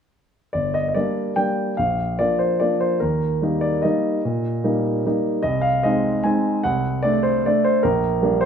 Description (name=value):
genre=classical, piano waltz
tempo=148 BPM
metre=3/4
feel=uneven beats, rubato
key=G minor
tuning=A4 = 440 Hz
part: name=warm baby grand piano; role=solo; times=0.5-8.5 s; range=G1 to Ab5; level=-18 LUFS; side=equal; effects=none
room=moderate large studio reverb, RT60 1.3 s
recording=minimal, uncompressed stereo recording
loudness=-18 LUFS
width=side -7 dB against mid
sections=0.5-8.5 A section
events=none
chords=0.5 Gm; 1.8 Bb; 3.0 Eb; 5.4 Ab/C; 6.6 D7/C; 7.8 Gm/Bb